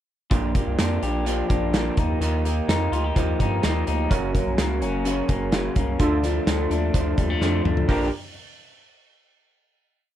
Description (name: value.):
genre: jangly indie pop.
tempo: 127 BPM.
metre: 4/4.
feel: straight.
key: Bb major.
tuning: A4 = 443 Hz.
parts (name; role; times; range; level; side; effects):
electric guitar through a small old amp; accompaniment; 0.3-8.1 s; Gb2 to G4; -28 LUFS; right 4 dB; none.
electric guitar through a small old amp; arpeggios; 0.3-8.1 s; Gb2 to G4; -27 LUFS; left 6 dB; none.
round analog bass; bass; 0.3-8.1 s; Gb1 to G2; -26 LUFS; equal; none.
loose indie drum kit; drums; 0.3-8.0 s; hi-hat, kick drum, snare drum, toms; -25 LUFS; equal; none.
warm analog keys; accompaniment; 4.1-8.1 s; Db4 to Bb4; -31 LUFS; right 5 dB; chorus.
room: light reverb.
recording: none.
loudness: -20 LUFS.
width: side -11 dB against mid.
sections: 0.3-7.9 verse; 7.9-9.8 final chord.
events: drum fill 7.4-7.9.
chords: 0.3 Bb6; 2.0 Ebadd9; 4.1 Gb; 6.0 Dm; 7.9 Bb6.